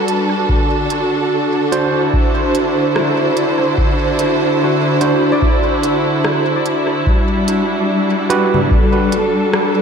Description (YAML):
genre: ambient dub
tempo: 73 BPM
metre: 4/4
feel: swing 59% on 16ths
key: D mixolydian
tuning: A4 = 439 Hz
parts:
  - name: rich studio string section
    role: sustained chords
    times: 0.0-9.8 s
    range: D3 to C5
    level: -15 LUFS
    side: equal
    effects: none
  - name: organic electronic drum kit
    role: drums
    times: 0.1-9.7 s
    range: congas, hi-hat, rim click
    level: -23 LUFS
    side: equal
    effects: dub echo
  - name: electronic kick drum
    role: drums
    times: 0.5-8.9 s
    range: none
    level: -16 LUFS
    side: equal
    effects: none
  - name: overdriven tine electric piano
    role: stabs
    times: 1.7-8.6 s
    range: D4 to C5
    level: -21 LUFS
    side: right 4 dB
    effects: dub echo
  - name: concert harp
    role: arpeggios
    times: 3.0-7.2 s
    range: E4 to D5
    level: -25 LUFS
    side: left 5 dB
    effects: ping-pong delay
room: wet lush hall reverb, RT60 1.8 s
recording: dreamy mix soaked in reverb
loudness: -13 LUFS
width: side -6 dB against mid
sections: 0.0-7.1 A section; 7.1-9.8 B section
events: none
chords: 0.5 D7; 7.1 Gmaj7(no3)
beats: | 0.49 1.31 2.14 2.96 | 3.78 4.60 5.42 6.25 | 7.07 7.89 8.71 9.54